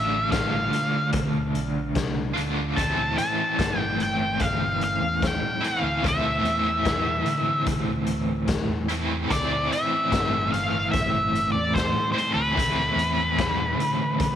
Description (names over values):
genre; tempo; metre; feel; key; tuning
psychedelic rock; 74 BPM; 4/4; straight; unclear; A4 = 436 Hz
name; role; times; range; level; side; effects
octave-fuzz lead guitar; melody; 0.0-14.4 s; B4 to A5; -25 LUFS; equal; wah, distortion, tape echo
cranked stack guitar; riff; 0.0-14.4 s; A2 to F4; -26 LUFS; equal; overdrive, tremolo
fingered electric bass; bass; 0.0-14.4 s; G1 to D3; -30 LUFS; right 1 dB; none
raw garage drum kit; drums; 0.3-14.4 s; hi-hat, kick drum, snare drum; -30 LUFS; left 3 dB; none
room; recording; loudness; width
light reverb; 1960s-style stereo; -22 LUFS; side -10 dB against mid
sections
0.0-14.4 A section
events
none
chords
0.0 Dm; 2.8 Am